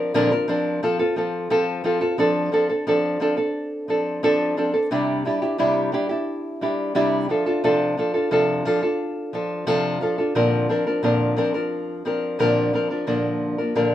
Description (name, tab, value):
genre	pop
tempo	88 BPM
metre	4/4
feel	straight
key	F major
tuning	A4 = 441 Hz
part	nylon-string guitar	solo	0.0-13.9 s	Bb2 to Bb4	-20 LUFS	equal	none
room	moderate studio ambience, RT60 0.5 s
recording	band playing live in one room, lossy compression artefacts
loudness	-20 LUFS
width	side -12 dB against mid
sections	0.0-2.2 A section; 2.2-13.1 B section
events	none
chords	0.0 Bbadd9; 0.8 F; 2.2 F6; 4.9 Cadd9; 7.3 F6/C; 10.4 Bbadd9; 13.1 Bb